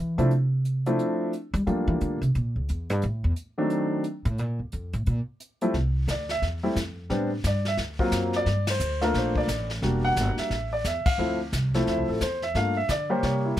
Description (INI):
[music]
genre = jazz piano trio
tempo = 176 BPM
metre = 4/4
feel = swing 62% on 8ths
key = unclear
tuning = A4 = 445 Hz
[part]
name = upright bass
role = bass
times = 0.0-13.6 s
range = E1 to G3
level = -26 LUFS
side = equal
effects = none
[part]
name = warm upright piano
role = melody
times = 0.2-13.6 s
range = Eb3 to Gb5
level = -26 LUFS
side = equal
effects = none
[part]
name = jazz brush drum kit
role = drums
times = 0.2-13.6 s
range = brushed snare drum, crash cymbal, hi-hat, kick drum, ride cymbal, snare drum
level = -31 LUFS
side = left 1 dB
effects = none
[sound]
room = little or no reverb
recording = close, detailed microphones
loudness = -24 LUFS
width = side -12 dB against mid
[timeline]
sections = 0.0-5.7 A section; 5.7-13.6 B section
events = upright bass solo 0.0-5.7; band accent 8.6, 11.0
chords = 0.3 Dm9; 1.7 Gm7; 2.4 C#dim7; 3.0 Dsus2 (rootless); 3.7 D7b9; 4.4 Dm; 5.1 N.C.; 5.7 Fmaj7(no3); 7.1 Am11; 7.8 D7alt; 8.5 Gm9; 9.8 Em7b5; 10.5 A5; 11.2 Dm9; 12.5 Gm7